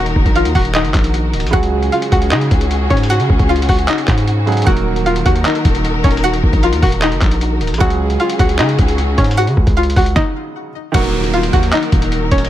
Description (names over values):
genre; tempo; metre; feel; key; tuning
hip hop, trap; 153 BPM; 4/4; half-time; Eb minor; A4 = 440 Hz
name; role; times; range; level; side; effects
string-like resonator pluck; melody; 0.0-12.5 s; Db4 to Gb5; -19 LUFS; left 1 dB; chorus, ping-pong delay
bright baby grand piano; accompaniment; 0.0-12.5 s; Db3 to Bb4; -23 LUFS; right 7 dB; none
warm studio string section; sustained chords; 0.0-12.5 s; Db3 to Bb4; -22 LUFS; left 2 dB; none
distorted 808-style bass; bass; 0.0-12.5 s; Db1 to Db3; -17 LUFS; equal; distortion
lo-fi sampler-style drum kit; drums; 0.1-12.5 s; crash cymbal, handclaps, hi-hat, kick drum, snare drum; -16 LUFS; equal; none
downlifter; sound effects; 10.9-12.5 s; none; -25 LUFS; equal; none
room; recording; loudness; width
digital ambience; none; -12 LUFS; side -12 dB against mid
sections
0.0-10.9 A section; 10.9-12.5 B section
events
stop 10.2-10.9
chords
0.0 Ebm; 1.5 Dbsus4; 4.7 Ebm; 7.8 Dbsus4; 10.9 Ebm